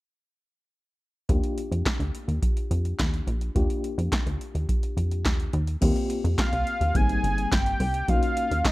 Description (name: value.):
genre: early-eighties boogie funk.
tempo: 106 BPM.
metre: 4/4.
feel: straight.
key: Eb major.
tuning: A4 = 440 Hz.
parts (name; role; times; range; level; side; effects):
mellow FM electric piano; accompaniment; 1.3-8.7 s; G3 to G4; -32 LUFS; left 2 dB; chorus, tremolo.
plucky analog bass; bass; 1.3-8.6 s; G1 to F2; -26 LUFS; equal; none.
electro analog drum machine; drums; 1.3-8.7 s; crash cymbal, handclaps, hi-hat, kick drum, snare drum; -26 LUFS; equal; none.
fat analog lead; melody; 6.4-8.7 s; D#5 to Ab5; -27 LUFS; equal; none.
room: digital ambience.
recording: dark, warm production.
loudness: -23 LUFS.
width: side -19 dB against mid.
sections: 1.3-5.8 A section; 5.8-8.7 B section.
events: none.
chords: 1.3 Ebmaj9; 5.5 N.C.; 5.8 Eb69; 7.0 Abmaj7; 8.1 Bmaj9.